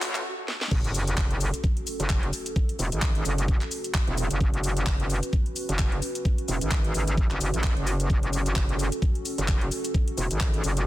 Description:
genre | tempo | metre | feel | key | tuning
bass house | 130 BPM | 4/4 | swing 56% on 16ths | F# minor | A4 = 440 Hz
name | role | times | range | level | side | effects
dark analog pad | sustained chords | 0.0-10.9 s | C#4 to B4 | -35 LUFS | right 1 dB | chorus, sidechain pumping
metallic wobble bass | bass | 0.0-10.9 s | E1 to A1 | -26 LUFS | equal | chorus, overdrive, sidechain pumping, high-pass filter
garage drum kit | drums | 0.0-10.8 s | cabasa, crash cymbal, handclaps, hi-hat, snare drum | -32 LUFS | left 1 dB | soft clipping on snare, small room reverb
riser and sub drop | sound effects | 0.0-2.6 s | none | -37 LUFS | equal | none
electronic kick drum | drums | 0.7-10.5 s | none | -24 LUFS | equal | small room reverb
room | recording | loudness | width
digital ambience | dense, heavily limited modern master, high-pass filter | -24 LUFS | side -15 dB against mid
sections
0.7-10.9 A section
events
drum fill 0.0, 0.5; riser 0.0; stop 0.3-0.7; drop 0.7-10.9; impact 0.7-2.6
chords
0.0 F#m

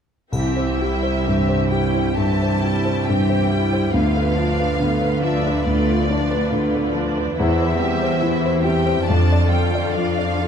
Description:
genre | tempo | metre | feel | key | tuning
classical, romantic movement for piano and orchestra | 64-73 BPM | 4/4 | rubato | C major | A4 = 440 Hz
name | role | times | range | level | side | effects
rich symphonic violin section | melody | 0.3-10.5 s | D5 to A5 | -28 LUFS | left 4 dB | none
warm grand piano | melody | 0.3-10.5 s | C2 to D5 | -19 LUFS | left 1 dB | none
rich symphonic violin section | second line | 0.3-10.5 s | D4 to G5 | -28 LUFS | left 1 dB | none
rich symphonic viola section | accompaniment | 0.3-10.5 s | D3 to F4 | -26 LUFS | right 2 dB | none
rich symphonic cello section | bass | 0.3-10.5 s | C2 to F2 | -25 LUFS | right 4 dB | none
triangle | percussion | 0.3-2.1 s | none | -40 LUFS | right 2 dB | none
room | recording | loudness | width
moderate scoring stage reverb, RT60 1.8 s | dark, warm production | -17 LUFS | side -7 dB against mid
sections
0.3-10.5 A section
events
none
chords
0.3 C; 3.9 Bdim/D; 7.4 C/E; 9.1 Dm/F

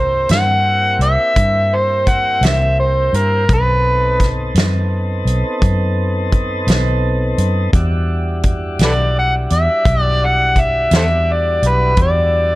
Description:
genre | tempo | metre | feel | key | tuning
slow blues | 56 BPM (dotted quarters) | 12/8 | straight | E minor | A4 = 443 Hz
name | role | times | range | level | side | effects
overdriven harmonica | melody | 0.0-12.6 s | A4 to F#5 | -15 LUFS | equal | none
tonewheel organ | sustained chords | 0.0-12.6 s | F#3 to A4 | -24 LUFS | equal | slow rotary speaker
vintage muted fingered electric bass | bass | 0.0-12.6 s | B1 to G2 | -17 LUFS | equal | none
natural country drum kit | drums | 0.3-12.1 s | hi-hat, kick drum, snare drum | -17 LUFS | equal | none
room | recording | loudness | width
light reverb, small room reverb | none | -13 LUFS | side -18 dB against mid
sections
0.0-12.6 A section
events
none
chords
0.0 C7; 3.5 B7b9; 7.7 Em9

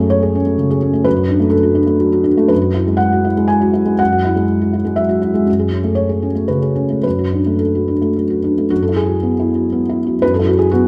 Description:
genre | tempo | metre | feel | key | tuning
neoclassical minimalist piano | 106-128 BPM | 3/4 | rubato | unclear | A4 = 440 Hz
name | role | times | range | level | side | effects
felt-muted upright piano | solo | 0.0-10.9 s | F#2 to G#5 | -15 LUFS | equal | none
room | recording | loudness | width
moderate scoring stage reverb, RT60 1.6 s | none | -15 LUFS | mono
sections
0.0-8.7 A section; 8.7-10.9 B section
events
none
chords
0.0 F#madd9; 1.1 D/F#; 2.5 Eadd9/F#; 5.5 F#madd9; 7.0 D/F#; 8.7 Eadd9/F#

